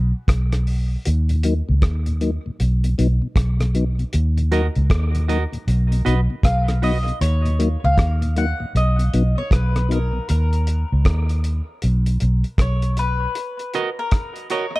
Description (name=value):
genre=dub reggae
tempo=78 BPM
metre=4/4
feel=swing 62% on 16ths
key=Eb minor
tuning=A4 = 440 Hz
part: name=vintage muted fingered electric bass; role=bass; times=0.0-13.3 s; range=Cb2 to Eb2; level=-18 LUFS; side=equal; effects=none
part: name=cloth-damped thuddy drum kit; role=drums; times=0.3-14.7 s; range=hi-hat, kick drum, rim click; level=-21 LUFS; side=equal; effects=none
part: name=mellow tonewheel organ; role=accompaniment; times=1.3-10.2 s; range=Eb2 to Eb4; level=-24 LUFS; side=left 3 dB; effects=stopped rotary speaker, high-pass filter
part: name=semi-hollow electric guitar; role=accompaniment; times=4.5-7.0, 13.7-14.7 s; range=Gb4 to Eb5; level=-26 LUFS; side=right 5 dB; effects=high-pass filter, dub echo
part: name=mandolin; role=melody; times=6.4-14.8 s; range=Bb4 to Gb5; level=-26 LUFS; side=left 2 dB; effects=dub echo
room=small room reverb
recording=dark, warm production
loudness=-17 LUFS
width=side -20 dB against mid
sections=0.0-14.8 A section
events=break 0.0-4.1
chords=0.0 N.C.; 1.1 Ebm; 2.6 B; 4.1 Ebm; 5.7 B; 7.2 Ebm; 8.7 B; 10.3 Eb5; 11.8 Bsus2; 13.4 Ebm